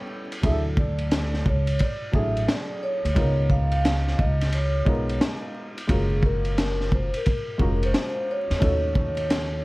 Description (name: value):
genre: hip hop, jazz-hop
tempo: 88 BPM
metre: 4/4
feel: swing 65% on 16ths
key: unclear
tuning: A4 = 440 Hz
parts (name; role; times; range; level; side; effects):
- warm upright piano; accompaniment; 0.0-9.6 s; F#3 to A#4; -32 LUFS; equal; none
- crunchy breakbeat drum kit; drums; 0.3-9.5 s; hi-hat, kick drum, ride cymbal, snare drum; -25 LUFS; equal; none
- vibraphone with soft mallets; melody; 0.4-9.6 s; G#4 to E#5; -29 LUFS; equal; none
- upright bass; bass; 0.4-9.6 s; E#1 to E2; -24 LUFS; equal; none
room: little or no reverb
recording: vinyl crackle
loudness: -21 LUFS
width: side -21 dB against mid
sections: 0.0-9.6 A section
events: none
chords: 0.4 Dmaj9; 3.2 C#13; 5.9 F#maj7; 8.6 D#m7b5